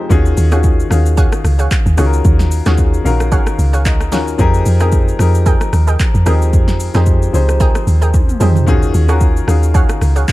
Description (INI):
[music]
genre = amapiano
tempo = 112 BPM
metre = 4/4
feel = swing 55% on 16ths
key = unclear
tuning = A4 = 440 Hz
[part]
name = warm baby grand piano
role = accompaniment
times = 0.0-10.3 s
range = Eb3 to Ab5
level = -19 LUFS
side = left 4 dB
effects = none
[part]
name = deep log drum bass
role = bass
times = 0.1-10.3 s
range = Bb1 to F2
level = -13 LUFS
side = equal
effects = none
[part]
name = deep house drum kit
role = drums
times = 0.1-10.3 s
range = handclaps, hi-hat, kick drum, rim click, shaker, snare drum, toms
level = -15 LUFS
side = equal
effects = overdrive
[part]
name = analog pluck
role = stabs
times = 0.5-10.2 s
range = Ab4 to G5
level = -24 LUFS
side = right 4 dB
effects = chorus, digital delay
[sound]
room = little or no reverb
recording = dark, warm production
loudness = -10 LUFS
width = side -17 dB against mid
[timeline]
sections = 0.1-10.3 A section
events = drop 0.1-10.3; grand piano fill 3.6-4.4; drum fill 8.1-8.7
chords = 0.1 Ebm11; 4.4 Fm11; 8.7 Ebm11